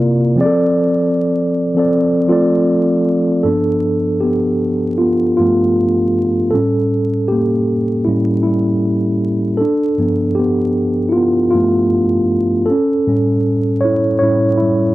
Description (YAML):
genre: hip hop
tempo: 78 BPM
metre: 4/4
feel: swing 59% on 16ths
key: unclear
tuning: A4 = 440 Hz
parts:
  - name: mellow tine electric piano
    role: solo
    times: 0.0-14.9 s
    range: G2 to D5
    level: -13 LUFS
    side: equal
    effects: medium stereo tremolo, low-pass filter
room: wet studio reverb, RT60 0.5 s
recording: vinyl crackle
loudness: -13 LUFS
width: side -17 dB against mid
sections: 0.0-3.5 A section; 3.5-14.9 B section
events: tine electric piano solo 3.5-14.9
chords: 0.4 F6; 3.5 G7; 6.5 A7b9; 9.6 G7; 12.7 A7